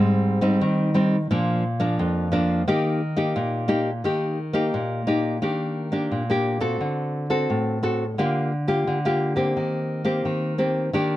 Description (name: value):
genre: samba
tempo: 87 BPM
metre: 4/4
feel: straight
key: Eb major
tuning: A4 = 439 Hz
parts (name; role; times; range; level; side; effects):
- nylon-string guitar; solo; 0.0-11.2 s; F2 to A4; -21 LUFS; equal; none
room: light reverb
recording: close, detailed microphones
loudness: -21 LUFS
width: side -15 dB against mid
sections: 0.0-5.4 A section; 5.4-11.2 B section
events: none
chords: 0.0 Abmaj7; 1.3 Bb; 2.7 Eb; 5.4 Ebmaj7; 6.8 D7; 8.2 Gm7/D; 9.6 Cm7/Eb